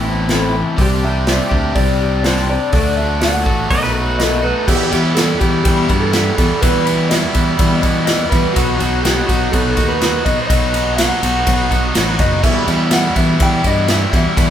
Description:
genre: folk rock and heartland rock.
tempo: 124 BPM.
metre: 4/4.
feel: straight.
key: E harmonic minor from 4.7 s.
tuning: A4 = 438 Hz.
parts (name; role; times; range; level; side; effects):
picked twelve-string acoustic guitar; accompaniment; 0.0-14.5 s; E2 to G4; -23 LUFS; left 4 dB; none.
biting overdriven guitar; riff; 0.0-14.5 s; E2 to A4; -20 LUFS; right 1 dB; none.
fingered electric bass; bass; 0.0-14.5 s; F#1 to G2; -19 LUFS; equal; none.
natural country drum kit; drums; 0.3-14.5 s; crash cymbal, hi-hat, kick drum, ride cymbal, snare drum; -17 LUFS; equal; none.
electric guitar through a small old amp; melody; 0.8-14.5 s; F#4 to G5; -20 LUFS; equal; none.
pedal steel guitar; second line; 3.7-4.5 s; B4 to D#5; -21 LUFS; right 1 dB; none.
tambourine; percussion; 4.7-14.5 s; none; -33 LUFS; right 6 dB; none.
room: light reverb.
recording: band playing live in one room.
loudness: -13 LUFS.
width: side -10 dB against mid.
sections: 0.0-4.7 A section; 4.7-14.5 B section.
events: none.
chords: 0.0 Amadd9; 0.8 Csus2; 2.7 D; 3.7 B7; 4.7 Emadd9; 8.6 B; 12.4 Emadd9.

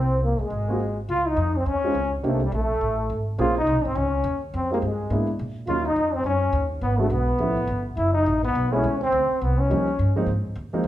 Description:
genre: jazz, small-group swing and bop.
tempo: 209 BPM.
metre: 4/4.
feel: swing 60% on 8ths.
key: unclear.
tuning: A4 = 440 Hz.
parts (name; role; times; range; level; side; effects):
clear trombone; melody; 0.0-10.2 s; G3 to F4; -25 LUFS; left 2 dB; none.
trombone with plunger mute; second line; 0.0-10.2 s; G3 to F4; -29 LUFS; right 3 dB; none.
upright bass; bass; 0.0-10.9 s; Gb1 to A#2; -25 LUFS; equal; none.
dark concert grand piano; accompaniment; 0.7-10.9 s; F3 to Ab4; -27 LUFS; right 1 dB; none.
room: moderate large studio reverb, RT60 1.1 s.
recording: band playing live in one room.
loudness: -21 LUFS.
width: side -13 dB against mid.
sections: 0.0-1.1 A section; 1.1-10.3 B section.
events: none.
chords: 0.0 Ab; 0.5 Ab13; 1.1 Dbadd9; 2.2 Cm9; 2.8 N.C.; 3.4 Bbm9; 4.5 Fm9; 5.1 E7#11; 5.7 Ebm9; 6.8 Abm7b5; 7.4 Db7alt; 8.0 Gbm11; 9.1 Csus2; 9.7 Eb7; 10.3 Ab6.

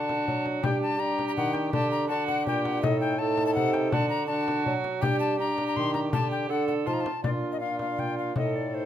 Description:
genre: classical, renaissance-style consort dance.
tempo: 164 BPM.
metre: 3/4.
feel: straight.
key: G harmonic minor.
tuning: A4 = 443 Hz.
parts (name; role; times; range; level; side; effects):
alto recorder; melody; 0.0-8.9 s; C5 to C6; -30 LUFS; left 5 dB; none.
rich viola; second line; 0.0-8.9 s; F4 to A4; -32 LUFS; right 6 dB; none.
mellow trombone; accompaniment; 0.0-8.9 s; D4 to Eb4; -31 LUFS; left 2 dB; none.
warm bassoon; bass; 0.0-8.9 s; A2 to G3; -32 LUFS; right 3 dB; none.
frame drum; percussion; 0.1-8.5 s; none; -32 LUFS; left 2 dB; none.
room: light reverb.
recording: close, detailed microphones.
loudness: -24 LUFS.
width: side -10 dB against mid.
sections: 0.0-7.2 A section; 7.2-8.9 B section.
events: none.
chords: 0.0 D; 0.6 G5; 1.7 Dsus4; 2.1 D; 2.8 Adim; 3.9 D; 5.0 G5; 6.1 Dsus4; 6.9 F7; 7.2 Bb; 8.4 Adim.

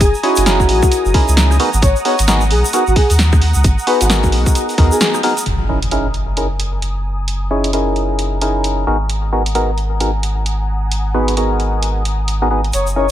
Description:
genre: UK garage, two-step garage.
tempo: 132 BPM.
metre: 4/4.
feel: swing 61% on 16ths.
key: G# minor.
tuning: A4 = 440 Hz.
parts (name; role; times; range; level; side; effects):
breathy flute-like synth lead; melody; 0.0-5.1, 12.7-13.1 s; F#4 to C#5; -19 LUFS; left 1 dB; lush chorus, vintage 12-bit sampler grit.
warm analog pad; sustained chords; 0.0-13.1 s; F#5 to D#6; -26 LUFS; right 1 dB; chorus, sidechain pumping.
soft dub sub bass; bass; 0.0-13.1 s; F#1 to D#2; -16 LUFS; equal; none.
electronic kick drum; drums; 0.0-4.9 s; none; -14 LUFS; equal; none.
punchy analog drum machine; drums; 0.0-12.8 s; hi-hat, rim click, snare drum; -20 LUFS; equal; none.
tube shaker; percussion; 0.0-5.4, 12.7-12.9 s; none; -24 LUFS; right 2 dB; none.
percussive organ stab; stabs; 0.2-13.1 s; B3 to C#5; -19 LUFS; equal; chorus, ping-pong delay.
impact; sound effects; 5.5-7.3 s; none; -24 LUFS; equal; none.
room: little or no reverb.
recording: none.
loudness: -13 LUFS.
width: side -12 dB against mid.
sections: 0.0-5.5 A section; 5.5-13.1 B section.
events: band accent 5.0; impact 5.5-7.3.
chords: 0.0 F#13; 1.6 G#m7; 5.5 F#13; 8.9 G#m7.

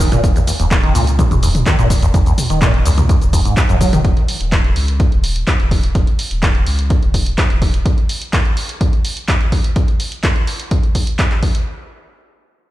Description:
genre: acid house.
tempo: 126 BPM.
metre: 4/4.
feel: straight.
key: Eb minor.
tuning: A4 = 442 Hz.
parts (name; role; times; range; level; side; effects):
liquid acid bass; riff; 0.0-4.0 s; Eb2 to Gb3; -17 LUFS; equal; phaser, wide subtle chorus, digital delay.
warm sub bass; bass; 0.0-7.8 s; Eb1 to Db2; -19 LUFS; equal; sidechain pumping.
electronic kick drum; drums; 0.0-11.5 s; none; -14 LUFS; equal; overdrive.
punchy analog drum machine; drums; 0.0-11.6 s; cabasa, handclaps, hi-hat, toms; -21 LUFS; equal; none.
room: little or no reverb.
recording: played on a big sound system in a bare room, large studio reverb.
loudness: -13 LUFS.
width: side -15 dB against mid.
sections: 0.0-11.7 A section.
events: none.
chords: none.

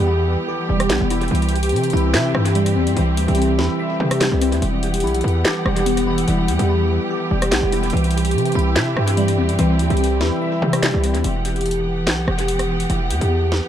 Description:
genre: hip hop, drill.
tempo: 145 BPM.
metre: 4/4.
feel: half-time.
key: E minor.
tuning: A4 = 443 Hz.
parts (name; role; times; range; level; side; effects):
concert harp; melody; 0.0-13.7 s; E4 to C5; -25 LUFS; equal; analog delay.
glassy digital keys; accompaniment; 0.0-11.3 s; E3 to E5; -21 LUFS; left 1 dB; chorus, analog delay.
warm symphonic string section; sustained chords; 0.0-13.7 s; C3 to F#5; -26 LUFS; right 2 dB; none.
hard-hitting 808-style bass; bass; 0.0-13.6 s; E1 to C3; -20 LUFS; equal; none.
drill drum kit; drums; 0.8-13.6 s; handclaps, hi-hat, rim click, snare drum; -24 LUFS; equal; analog delay.
room: light reverb.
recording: echo-heavy mix.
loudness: -16 LUFS.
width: side -10 dB against mid.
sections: 0.0-11.2 A section; 11.2-13.7 B section.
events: none.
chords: 0.0 Emadd9; 1.3 C; 4.6 Emadd9; 7.9 C; 11.2 Emadd9.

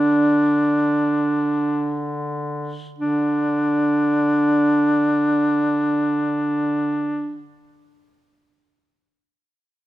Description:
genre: caucasian folk, Caucasian lament.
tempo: free time.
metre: none.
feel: none.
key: unclear.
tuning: A4 = 440 Hz.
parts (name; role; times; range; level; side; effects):
warm duduk; melody; 0.0-7.4 s; D4; -18 LUFS; right 1 dB; none.
warm duduk; drone; 0.0-7.4 s; D3; -29 LUFS; left 2 dB; none.
room: little or no reverb.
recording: close, detailed microphones.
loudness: -18 LUFS.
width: side -15 dB against mid.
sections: 0.0-3.0 A section; 3.0-6.8 B section.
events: slowing down 0.0-3.0.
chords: none.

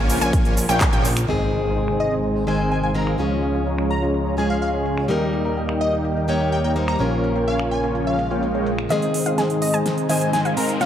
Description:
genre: EDM, festival progressive house.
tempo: 126 BPM.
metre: 4/4.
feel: straight.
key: Ab major.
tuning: A4 = 441 Hz.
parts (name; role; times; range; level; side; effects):
lush unison pad; sustained chords; 0.0-10.9 s; Db2 to Eb5; -29 LUFS; equal; chorus, sidechain pumping.
wide unison pluck; arpeggios; 0.0-1.1, 8.9-10.9 s; Eb5 to Ab5; -27 LUFS; left 1 dB; sidechain pumping, dub echo.
dense compressed supersaw; riff; 0.0-10.9 s; Ab3 to Bb5; -24 LUFS; right 1 dB; sidechain pumping, low-pass filter, dub echo.
fat analog bass; bass; 0.0-8.9 s; Ab1 to Eb2; -26 LUFS; equal; sidechain pumping.
big-room dance drum kit; drums; 0.1-10.9 s; finger snaps, handclaps, hi-hat, shaker, snare drum; -28 LUFS; right 1 dB; low-pass filter on hats, studio ambience, low-pass filter on perc, low-pass filter on snare.
electronic kick drum; drums; 0.3-0.9 s; none; -19 LUFS; equal; studio ambience.
picked plugged-in steel-string acoustic guitar; accompaniment; 1.3-10.9 s; Eb3 to Db5; -24 LUFS; left 2 dB; sidechain pumping.
impact, swell and riser; sound effects; 1.3-3.2, 8.2-10.9 s; none; -30 LUFS; right 1 dB; none.
plucky unison lead; melody; 2.0-10.7 s; Eb5 to Bb5; -27 LUFS; equal; dub echo.
room: moderate lush hall reverb, RT60 2.0 s.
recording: none.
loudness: -18 LUFS.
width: side -10 dB against mid.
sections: 0.0-1.3 A section; 1.3-8.9 B section; 8.9-10.9 C section.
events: drop 0.0-1.3; band accent 0.8; impact 1.3-3.2; filter sweep on analog synth pad 1.3-8.9; swell 8.2-8.9; build-up 8.9-10.9; drum fill 8.9-10.9; filter sweep on supersaw synth 8.9-10.9; filter sweep on synth pluck 8.9-10.9.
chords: 0.0 Bbm; 1.3 Ab; 3.2 Db; 5.1 Eb; 7.0 Bbm; 8.9 Ab.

